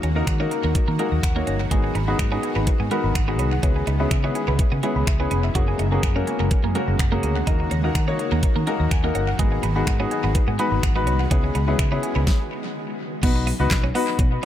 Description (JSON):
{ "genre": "dance-pop", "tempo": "125 BPM", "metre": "4/4", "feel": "straight", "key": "G# minor", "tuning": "A4 = 439 Hz", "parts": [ { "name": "clear concert grand piano", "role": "accompaniment", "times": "0.0-14.4 s", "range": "A#3 to A#5", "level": "-26 LUFS", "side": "left 3 dB", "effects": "sidechain pumping, tape echo" }, { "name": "shimmering ambient pad", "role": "sustained chords", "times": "0.0-14.4 s", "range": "B2 to F#4", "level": "-30 LUFS", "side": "equal", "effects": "chorus, built-in reverb, sidechain pumping" }, { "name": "thumb-piano-like synth pluck", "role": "arpeggios", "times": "0.0-12.2 s", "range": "A#4 to A#6", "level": "-34 LUFS", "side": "right 2 dB", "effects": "chorus, sidechain pumping, tape echo" }, { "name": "twelve-string electric guitar", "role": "riff", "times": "0.0-14.2 s", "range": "G#3 to F#4", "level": "-31 LUFS", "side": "right 5 dB", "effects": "analog chorus, tape echo" }, { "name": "vintage muted fingered electric bass", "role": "bass", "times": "0.0-14.4 s", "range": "E#1 to D#3", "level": "-23 LUFS", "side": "equal", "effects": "sidechain pumping" }, { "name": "pop drum kit", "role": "drums", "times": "0.0-14.4 s", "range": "crash cymbal, finger snaps, handclaps, hi-hat, kick drum, snare drum", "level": "-22 LUFS", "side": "equal", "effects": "tape echo" } ], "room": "light reverb", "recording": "echo-heavy mix", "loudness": "-19 LUFS", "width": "side -11 dB against mid", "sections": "0.0-13.2 A section; 13.2-14.4 B section", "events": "grand piano fill 0.8-1.7, 8.4-9.4; stop 12.3-13.2", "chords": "0.0 D#m; 1.7 G#m7; 3.6 C#m7; 5.6 F#add9; 7.5 D#m; 9.4 G#m7; 11.3 C#m7; 13.2 B" }